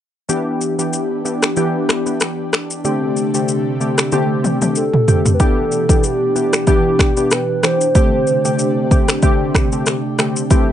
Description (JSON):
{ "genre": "afrobeats", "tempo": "94 BPM", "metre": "4/4", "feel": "swing 55% on 16ths", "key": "E minor", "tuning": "A4 = 440 Hz", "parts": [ { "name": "warm analog keys", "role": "accompaniment", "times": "0.3-10.7 s", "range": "D3 to G4", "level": "-18 LUFS", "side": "left 1 dB", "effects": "chorus" }, { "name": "airy breathy pad", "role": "sustained chords", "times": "0.5-10.7 s", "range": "B2 to G4", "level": "-23 LUFS", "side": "equal", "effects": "chorus" }, { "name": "deep house drum kit", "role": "drums", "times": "0.3-10.7 s", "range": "finger snaps, kick drum, rim click, shaker, toms", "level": "-16 LUFS", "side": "equal", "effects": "overdrive" }, { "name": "hollow clarinet-like synth lead", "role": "melody", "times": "4.8-9.6 s", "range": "G4 to C5", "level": "-18 LUFS", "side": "equal", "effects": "chorus, plate reverb" } ], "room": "light reverb", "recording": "nothing above 10.6 kHz", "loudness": "-14 LUFS", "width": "side -10 dB against mid", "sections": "0.3-5.4 A section; 5.4-10.7 B section", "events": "drum fill 4.1-5.4", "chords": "0.3 Em7; 2.8 D7sus4; 5.4 Em7; 8.0 D7sus4" }